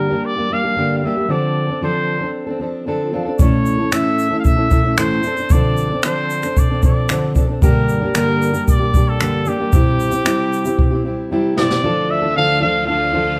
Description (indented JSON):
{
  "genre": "acoustic pop",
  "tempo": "114 BPM",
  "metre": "4/4",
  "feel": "straight",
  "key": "D minor",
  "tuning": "A4 = 440 Hz",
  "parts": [
    { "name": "clear trumpet", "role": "melody", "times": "0.0-13.4 s", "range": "G4 to F5", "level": "-23 LUFS", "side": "equal", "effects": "none" },
    { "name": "fingerpicked plugged-in steel-string acoustic guitar", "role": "accompaniment", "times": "0.0-13.4 s", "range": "G2 to A4", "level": "-21 LUFS", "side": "equal", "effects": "none" },
    { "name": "vibraphone with medium hard mallets", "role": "second line", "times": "3.0-3.5 s", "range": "F4 to F5", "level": "-31 LUFS", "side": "equal", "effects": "none" },
    { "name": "jazz brush drum kit", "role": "drums", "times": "3.4-11.8 s", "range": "finger snaps, kick drum, shaker, snare drum", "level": "-18 LUFS", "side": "equal", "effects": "none" },
    { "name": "bright studio string section", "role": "sustained chords", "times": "11.8-13.4 s", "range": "D2 to A4", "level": "-29 LUFS", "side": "equal", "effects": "none" }
  ],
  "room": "moderate large studio reverb, RT60 1.2 s",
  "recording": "band playing live in one room",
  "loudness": "-17 LUFS",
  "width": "mono",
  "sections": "0.0-11.8 A section; 11.8-13.4 B section",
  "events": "drum fill 10.8-11.8",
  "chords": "0.0 Gm; 1.3 Dm7; 3.4 A; 5.2 Dm7; 7.6 Gm; 9.7 C; 11.8 Dm",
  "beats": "0.24 0.77 | 1.30 1.82 2.35 2.88 | 3.40 3.93 4.46 4.98 | 5.51 6.04 6.56 7.09 | 7.62 8.14 8.67 9.20 | 9.72 10.25 10.78 11.30 | 11.83 12.36 12.88"
}